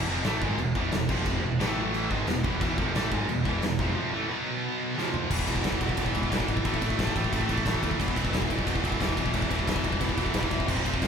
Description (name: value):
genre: heavy metal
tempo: 178 BPM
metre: 4/4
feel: straight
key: unclear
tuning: A4 = 440 Hz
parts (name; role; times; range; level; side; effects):
- heavy high-gain guitar; riff; 0.0-11.1 s; E2 to B3; -34 LUFS; left 9 dB; distortion
- scooped high-gain guitar; riff; 0.0-11.1 s; E2 to B3; -30 LUFS; right 5 dB; distortion
- tight distorted guitar; riff; 0.0-11.1 s; E2 to B3; -33 LUFS; left 1 dB; distortion
- growling picked electric bass; bass; 0.0-11.1 s; E1 to D#2; -33 LUFS; left 1 dB; overdrive
- big rock drum kit; drums; 0.2-11.1 s; china cymbal, crash cymbal, kick drum, ride cymbal, snare drum, toms; -29 LUFS; equal; none
room: moderate stone room reverb, RT60 1.3 s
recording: band playing live in one room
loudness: -25 LUFS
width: side -7 dB against mid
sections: 0.0-5.3 A section; 5.3-11.1 B section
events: break 4.0-5.3; drum fill 5.0-5.3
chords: 0.0 E; 1.1 F5; 1.4 E5; 1.6 A5; 2.1 E; 4.3 B5; 5.0 F5; 5.3 E5; 6.6 A5; 8.0 E5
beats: 0.24 0.58 0.92 | 1.26 1.60 1.94 2.27 | 2.61 2.95 3.29 3.62 | 3.96 4.30 4.63 4.97 | 5.31 5.64 5.98 6.31 | 6.65 6.99 7.32 7.66 | 7.99 8.33 8.66 9.00 | 9.33 9.67 10.01 10.34 | 10.68 11.02